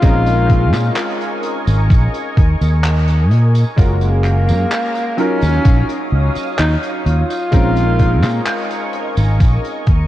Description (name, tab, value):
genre	vaporwave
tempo	64 BPM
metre	4/4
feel	straight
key	Bb minor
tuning	A4 = 439 Hz
part	breathy tenor saxophone	melody	0.0-8.9 s	Bb3 to F4	-21 LUFS	left 1 dB	tape echo
part	warm electric grand piano	accompaniment	0.0-10.1 s	Gb3 to Bb4	-23 LUFS	equal	ensemble chorus, analog delay
part	soft string machine	sustained chords	0.0-10.1 s	Ab4 to Eb6	-26 LUFS	equal	phaser, ensemble chorus
part	fingered electric bass	bass	0.0-10.0 s	Gb1 to Bb2	-14 LUFS	equal	none
part	electronic kick drum	drums	0.0-10.1 s	none	-12 LUFS	equal	vintage 12-bit sampler grit
part	modern studio drum kit	drums	0.0-10.1 s	handclaps, hi-hat, tambourine	-27 LUFS	equal	vintage 12-bit sampler grit
room	light reverb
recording	cassette tape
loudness	-13 LUFS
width	side -14 dB against mid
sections	0.0-10.1 A section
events	fade-out 8.8-10.1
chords	0.0 Bbm11; 3.8 Gbmaj9; 5.2 Ebm9; 7.5 Bbm11